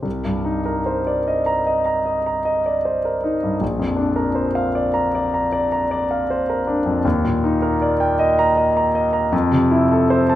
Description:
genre	classical, impressionist solo piano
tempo	47-54 BPM (dotted quarters)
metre	9/8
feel	rubato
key	C minor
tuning	A4 = 440 Hz
part	clear concert grand piano	solo	0.0-10.4 s	Bb1 to Bb5	-17 LUFS	equal	none
room	wet recital hall reverb, RT60 1.4 s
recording	none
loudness	-17 LUFS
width	side -13 dB against mid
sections	0.1-10.4 A section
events	none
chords	0.1 Cm9; 3.6 Bbadd9; 7.0 Ebmaj7; 9.3 Fmaj7

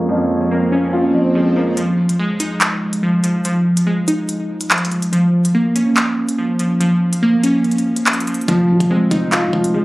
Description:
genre	hip hop, drill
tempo	143 BPM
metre	4/4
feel	half-time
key	F minor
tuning	A4 = 440 Hz
part	dark concert grand piano	accompaniment	0.0-1.8, 8.5-9.8 s	F2 to F4	-18 LUFS	equal	low-pass filter
part	hollow soft pad	sustained chords	0.0-1.7 s	F3 to Db5	-31 LUFS	right 2 dB	chorus, phaser
part	glassy digital keys	arpeggios	0.0-9.8 s	F3 to Eb4	-16 LUFS	equal	chorus, low-pass filter, ping-pong delay
part	swell	sound effects	0.5-1.8 s	none	-26 LUFS	right 1 dB	none
part	drill drum kit	drums	1.8-9.7 s	handclaps, hi-hat, kick drum	-19 LUFS	equal	none
part	growling 808-style bass	bass	8.5-9.8 s	Eb1 to C3	-23 LUFS	equal	none
room	light reverb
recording	recorded on a phone in the room, club reverb, low-pass filter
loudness	-14 LUFS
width	side -19 dB against mid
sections	0.0-1.8 A section; 1.8-9.8 B section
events	filter sweep 0.0-1.8; swell 0.5-1.8; kick muted 1.8-8.5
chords	0.0 Bbm7/F; 1.8 Fm7; 5.1 Bbm/F; 8.5 Fm7

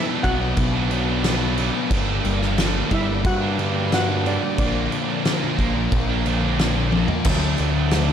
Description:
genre	quiet-loud alternative rock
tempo	90 BPM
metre	4/4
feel	straight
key	unclear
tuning	A4 = 439 Hz
part	steel pan	melody	0.0-6.6 s	D4 to F#5	-28 LUFS	right 1 dB	slapback echo, tape echo
part	distorted electric guitar	riff	0.0-8.1 s	G2 to D4	-27 LUFS	right 10 dB	overdrive
part	heavy high-gain guitar	riff	0.0-7.2 s	G2 to B3	-30 LUFS	equal	distortion, slapback echo
part	thick fuzz guitar	riff	0.0-8.1 s	G2 to D4	-26 LUFS	left 8 dB	distortion
part	growling picked electric bass	bass	0.2-8.1 s	G1 to G2	-24 LUFS	equal	overdrive
part	loose indie drum kit	drums	0.2-8.1 s	crash cymbal, kick drum, snare drum, toms	-24 LUFS	equal	none
room	moderate lush hall reverb, RT60 2.2 s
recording	big arena sound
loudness	-18 LUFS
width	side -8 dB against mid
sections	0.0-7.3 A section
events	drum fill 6.9-7.3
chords	0.0 Bm; 1.9 Gm; 4.6 Bb; 7.3 D

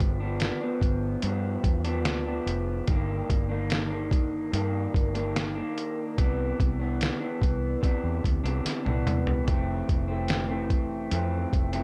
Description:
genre	indie pop, bedroom pop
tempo	73 BPM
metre	4/4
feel	straight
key	F lydian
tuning	A4 = 441 Hz
part	electric guitar through a small old amp	accompaniment	0.0-11.8 s	F2 to D4	-33 LUFS	equal	subtle chorus, vibrato effect, plate reverb
part	vintage muted fingered electric bass	bass	0.0-11.8 s	F1 to C3	-33 LUFS	equal	none
part	lo-fi sampler-style drum kit	drums	0.0-11.8 s	hi-hat, kick drum, snare drum, toms	-29 LUFS	equal	overdrive
room	light reverb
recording	none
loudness	-28 LUFS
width	mono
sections	0.0-11.8 A section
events	drum fill 8.6-9.5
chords	0.0 G7; 2.9 Ebmaj7/G; 6.2 Cmaj9; 9.5 Fmaj7

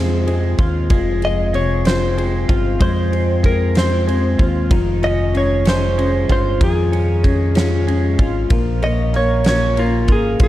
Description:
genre	six-eight pop ballad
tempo	63 BPM (dotted quarters)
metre	6/8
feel	straight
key	F minor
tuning	A4 = 440 Hz
part	direct-recorded clean electric guitar	melody	0.0-10.5 s	F4 to Eb5	-22 LUFS	equal	lush chorus
part	dark upright piano	accompaniment	0.0-10.5 s	C3 to F4	-22 LUFS	left 4 dB	none
part	twelve-string electric guitar	arpeggios	0.0-10.5 s	Eb3 to F4	-26 LUFS	right 5 dB	wide subtle chorus, slapback echo
part	deep dub fingered electric bass	bass	0.0-10.5 s	F1 to F2	-19 LUFS	equal	none
part	huge arena drum kit	drums	0.3-10.5 s	kick drum, ride cymbal, snare drum	-20 LUFS	equal	none
room	light reverb, small room ambience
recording	dark, warm production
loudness	-14 LUFS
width	side -14 dB against mid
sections	0.0-10.5 A section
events	none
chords	0.0 Fm; 4.7 Dbadd9/F; 8.5 Bbm

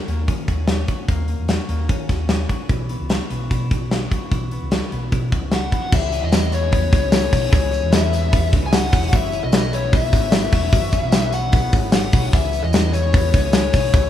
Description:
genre	jangly indie pop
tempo	150 BPM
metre	4/4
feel	straight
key	C# minor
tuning	A4 = 440 Hz
part	twelve-string electric guitar	arpeggios	0.0-14.1 s	E3 to G#4	-29 LUFS	left 6 dB	none
part	fingered electric bass	bass	0.1-14.1 s	E1 to D#3	-23 LUFS	equal	none
part	big rock drum kit	drums	0.1-14.0 s	crash cymbal, hi-hat, kick drum, snare drum	-18 LUFS	equal	none
part	fuzz lead guitar	melody	5.5-14.1 s	C#5 to G#5	-23 LUFS	left 4 dB	distortion, analog delay
part	lush unison pad	sustained chords	5.9-14.1 s	C#3 to E4	-32 LUFS	right 1 dB	chorus
part	tambourine	percussion	5.9-14.0 s	none	-37 LUFS	right 4 dB	none
room	light reverb, small room ambience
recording	rough home demo mix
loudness	-16 LUFS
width	side -11 dB against mid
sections	0.0-5.9 A section; 5.9-14.1 B section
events	none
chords	0.0 D#m7; 2.7 Bsus4; 5.9 C#m7

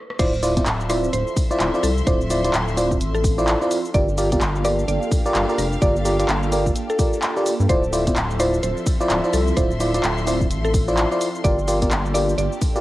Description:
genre	UK garage, two-step garage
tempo	128 BPM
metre	4/4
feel	swing 60% on 16ths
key	D minor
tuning	A4 = 440 Hz
part	punchy analog drum machine	drums	0.1-12.8 s	cabasa, congas, crash cymbal, handclaps, hi-hat, rim click	-26 LUFS	equal	cassette tape
part	mallet-like synth pluck	melody	0.2-12.6 s	A4 to D5	-27 LUFS	equal	chorus, cassette tape, analog delay
part	airy breathy pad	sustained chords	0.2-12.8 s	Bb3 to A4	-30 LUFS	right 1 dB	chorus, phaser, sidechain pumping
part	FM electric piano	stabs	0.2-12.8 s	E4 to D5	-22 LUFS	equal	chorus, analog delay
part	rubbery square bass	bass	0.2-12.5 s	D1 to G2	-24 LUFS	equal	none
part	electronic kick drum	drums	0.2-12.7 s	none	-21 LUFS	equal	cassette tape
part	warm studio string section	texture	0.2-12.8 s	F3 to C6	-32 LUFS	left 1 dB	sidechain pumping
room	moderate booth ambience, RT60 0.2 s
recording	home recording on cassette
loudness	-18 LUFS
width	side -16 dB against mid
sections	0.2-12.8 A section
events	break 0.0; drum fill 0.0; drop 0.2-12.8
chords	0.2 Dm9; 3.9 Gm7; 7.7 Dm9; 11.4 Gm7

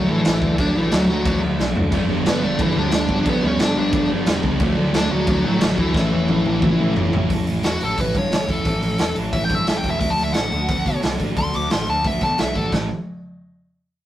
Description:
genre	punk rock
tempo	178 BPM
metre	4/4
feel	straight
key	A mixolydian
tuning	A4 = 440 Hz
part	dark smooth lead guitar	melody	0.0-12.7 s	E3 to D6	-22 LUFS	left 1 dB	overdrive
part	sludgy distorted guitar	riff	0.0-12.9 s	G2 to A4	-25 LUFS	right 1 dB	overdrive
part	fuzz picked electric bass	bass	0.0-12.9 s	E1 to B2	-26 LUFS	equal	overdrive
part	raw garage drum kit	drums	0.2-12.8 s	crash cymbal, hi-hat, kick drum, snare drum, splash cymbal, toms	-22 LUFS	equal	none
part	thick fuzz guitar	riff	1.9-7.3 s	G2 to E4	-24 LUFS	equal	distortion
room	light reverb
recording	rough rehearsal-room recording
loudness	-17 LUFS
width	side -12 dB against mid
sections	0.0-7.3 A section; 7.3-12.7 B section; 12.7-14.1 C section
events	drum fill 1.6-1.9, 6.0-7.3; lead electric guitar solo 7.3-12.7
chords	0.0 D; 1.9 G; 4.6 D; 6.0 A; 10.0 D; 12.7 A5

